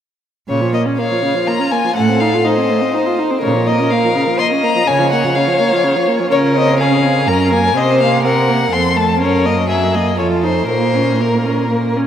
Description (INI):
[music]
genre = quick classical-period movement for string quartet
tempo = 124 BPM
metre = 3/4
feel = straight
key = Bb minor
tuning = A4 = 441 Hz
[part]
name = rich violin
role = melody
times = 0.5-11.7 s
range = Bb4 to C6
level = -18 LUFS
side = left 4 dB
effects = none
[part]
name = rich viola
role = accompaniment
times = 0.5-12.1 s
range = Db3 to F4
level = -17 LUFS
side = right 1 dB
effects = none
[part]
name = warm cello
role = bass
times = 0.5-12.0 s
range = F2 to Db3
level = -19 LUFS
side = right 4 dB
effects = none
[part]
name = rich violin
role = second line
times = 1.0-11.9 s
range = F4 to Eb5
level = -18 LUFS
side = left 1 dB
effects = none
[sound]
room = wet cathedral reverb, RT60 4.8 s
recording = in a vast, echoing space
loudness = -12 LUFS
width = side -9 dB against mid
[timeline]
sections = 0.5-12.1 A section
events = none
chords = 0.5 Bbm; 2.0 F7/A; 3.4 Bbm; 4.9 Bbm/Db; 6.3 Dbmaj7; 7.3 Gb; 7.8 Cm7b5; 8.7 F; 9.2 Gb; 9.7 Gb7; 10.2 F7; 10.7 Bbm